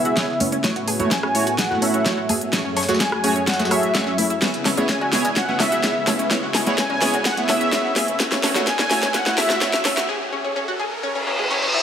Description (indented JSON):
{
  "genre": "progressive house",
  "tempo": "127 BPM",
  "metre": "4/4",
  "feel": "straight",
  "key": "C# minor",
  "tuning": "A4 = 440 Hz",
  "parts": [
    { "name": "soft supersaw", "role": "melody", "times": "0.0-10.1 s", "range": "E5 to G#5", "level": "-24 LUFS", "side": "equal", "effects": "sidechain pumping, low-pass filter, dub echo" },
    { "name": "warm analog pad", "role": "sustained chords", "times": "0.0-10.1 s", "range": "F#2 to E5", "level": "-29 LUFS", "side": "left 1 dB", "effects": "chorus, sidechain pumping" },
    { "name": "analog pluck", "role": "arpeggios", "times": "0.0-11.8 s", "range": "G#3 to C#5", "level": "-26 LUFS", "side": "left 1 dB", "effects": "wide subtle chorus, sidechain pumping, digital delay" },
    { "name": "chorused polysynth", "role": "stabs", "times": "0.0-9.7 s", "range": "A3 to F#5", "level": "-25 LUFS", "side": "right 2 dB", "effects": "sidechain pumping, digital delay" },
    { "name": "pop drum kit", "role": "drums", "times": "0.1-10.1 s", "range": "hi-hat, rim click, snare drum", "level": "-22 LUFS", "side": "equal", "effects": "sidechain pumping on hats, studio ambience" },
    { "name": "breakbeat sampler-style drum kit", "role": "drums", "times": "0.2-10.0 s", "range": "hi-hat, snare drum, tambourine", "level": "-32 LUFS", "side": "left 2 dB", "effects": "none" },
    { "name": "electronic kick drum", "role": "drums", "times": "0.2-9.7 s", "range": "none", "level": "-30 LUFS", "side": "equal", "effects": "none" },
    { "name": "congas, woodblock and cowbell", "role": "percussion", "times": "0.4-10.0 s", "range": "none", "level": "-30 LUFS", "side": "equal", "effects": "sidechain pumping on perc" },
    { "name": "riser and reverse cymbal", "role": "sound effects", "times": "7.9-11.8 s", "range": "none", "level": "-27 LUFS", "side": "equal", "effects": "none" }
  ],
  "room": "wet lush hall reverb, RT60 2.1 s",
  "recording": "high-pass filter",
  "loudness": "-18 LUFS",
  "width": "side -8 dB against mid",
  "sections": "0.0-11.8 A section",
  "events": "build-up 0.0-11.8; drum fill 0.0-10.1; filter sweep on supersaw synth 0.0-11.8; riser 7.9-11.8; break 10.1-11.8; reverse cymbal 11.0-11.8",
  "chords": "0.0 C#m7; 0.6 A6; 2.5 F#madd9; 4.4 C#m7; 8.2 A6; 10.1 F#sus2 (rootless)",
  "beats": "0.17 | 0.64 1.11 1.59 2.06 | 2.53 3.00 3.48 3.95 | 4.42 4.89 5.37 5.84 | 6.31 6.78 7.25 7.73 | 8.20 8.67 9.14 9.62 | 10.09 10.56 11.04 11.51"
}